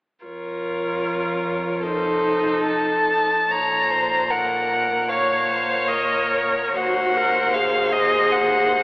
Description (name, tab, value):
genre	classical, slow romantic movement for string quartet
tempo	65-81 BPM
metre	4/4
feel	rubato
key	Bb minor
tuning	A4 = 440 Hz
part	clear viola	accompaniment	0.2-8.8 s	Eb4 to Db5	-24 LUFS	equal	none
part	warm cello	bass	0.2-8.8 s	Eb2 to Bb2	-33 LUFS	right 1 dB	none
part	clear violin	melody	0.3-8.8 s	C5 to Bb5	-21 LUFS	left 1 dB	none
part	rich violin	second line	0.3-8.8 s	A4 to Db5	-24 LUFS	equal	none
room	wet cathedral reverb, RT60 6.2 s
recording	recorded in a church or concert hall, AM radio sound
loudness	-18 LUFS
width	side -23 dB against mid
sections	0.3-3.5 A section; 3.5-8.8 B section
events	none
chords	0.3 Bbm/F; 1.8 F7; 3.5 Bbm; 6.8 Cdim/Eb